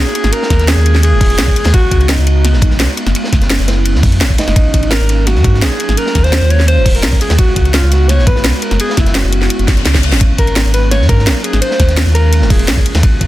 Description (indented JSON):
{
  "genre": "liquid drum and bass",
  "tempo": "170 BPM",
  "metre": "4/4",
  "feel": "straight",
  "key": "unclear",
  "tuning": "A4 = 440 Hz",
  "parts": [
    { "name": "breathy alto saxophone", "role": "melody", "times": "0.0-13.0 s", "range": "D#4 to C#5", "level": "-18 LUFS", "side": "left 1 dB", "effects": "digital delay" },
    { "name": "airy breathy pad", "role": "sustained chords", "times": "0.0-13.3 s", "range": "F#3 to F#4", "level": "-21 LUFS", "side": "right 3 dB", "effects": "chorus, vintage 12-bit sampler grit, sidechain pumping" },
    { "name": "sub bass with octave", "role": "bass", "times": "0.0-13.3 s", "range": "D#1 to G#2", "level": "-12 LUFS", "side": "equal", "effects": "none" },
    { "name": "crunchy breakbeat drum kit", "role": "drums", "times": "0.1-13.3 s", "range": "hi-hat, ride cymbal, snare drum", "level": "-22 LUFS", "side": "equal", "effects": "high-pass filter on cymbals, high-pass filter on hats, high-pass filter on snare, high-pass filter on room" },
    { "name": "garage drum kit", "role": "drums", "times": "0.2-13.3 s", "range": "hi-hat, snare drum", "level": "-17 LUFS", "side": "equal", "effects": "none" },
    { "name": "electronic kick drum", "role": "drums", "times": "0.5-13.3 s", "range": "none", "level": "-12 LUFS", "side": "equal", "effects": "none" },
    { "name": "reverse cymbal", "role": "sound effects", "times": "9.6-10.2 s", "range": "none", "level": "-24 LUFS", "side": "left 6 dB", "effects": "none" }
  ],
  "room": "studio ambience",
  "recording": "dense, heavily limited modern master",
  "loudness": "-9 LUFS",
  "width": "side -15 dB against mid",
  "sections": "0.0-13.3 A section",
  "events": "reverse cymbal 9.6-10.2; drum fill 9.7-10.2",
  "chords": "0.3 D#9sus4; 1.7 C#9sus4; 3.0 F#9sus4; 4.6 G#9sus4; 6.0 D#9sus4; 7.4 C#9sus4; 8.6 F#9sus4; 10.2 G#9sus4; 11.6 D#9sus4"
}